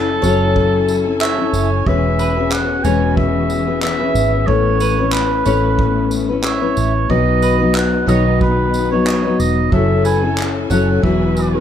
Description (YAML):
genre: acoustic pop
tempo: 92 BPM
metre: 4/4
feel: swing 55% on 16ths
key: E major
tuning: A4 = 439 Hz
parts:
  - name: warm oboe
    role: melody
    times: 0.0-11.6 s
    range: A4 to G#5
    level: -21 LUFS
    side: right 4 dB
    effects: none
  - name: fingerpicked steel-string acoustic guitar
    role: accompaniment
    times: 0.0-11.6 s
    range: B2 to B4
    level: -16 LUFS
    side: left 5 dB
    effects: none
  - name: warm studio string section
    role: sustained chords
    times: 0.0-11.6 s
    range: E3 to G#5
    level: -27 LUFS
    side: equal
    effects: none
  - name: vintage muted fingered electric bass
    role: bass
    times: 0.0-11.6 s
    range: E1 to B1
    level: -20 LUFS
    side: right 2 dB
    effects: none
  - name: mandolin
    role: arpeggios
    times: 0.2-10.9 s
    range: B4 to E5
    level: -24 LUFS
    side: right 7 dB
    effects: none
  - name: unplugged drum kit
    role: drums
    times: 0.2-11.5 s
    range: handclaps, kick drum, tambourine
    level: -23 LUFS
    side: right 1 dB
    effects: none
room: light reverb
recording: none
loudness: -13 LUFS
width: side -9 dB against mid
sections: 0.0-11.6 A section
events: none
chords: 0.0 F#m7; 1.9 E6; 4.5 Aadd9; 7.1 B; 9.7 F#m7; 11.0 Eadd9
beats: 0.56 1.21 | 1.87 2.52 3.17 3.83 | 4.48 5.13 5.79 6.44 | 7.10 7.75 8.41 9.06 | 9.72 10.38 11.03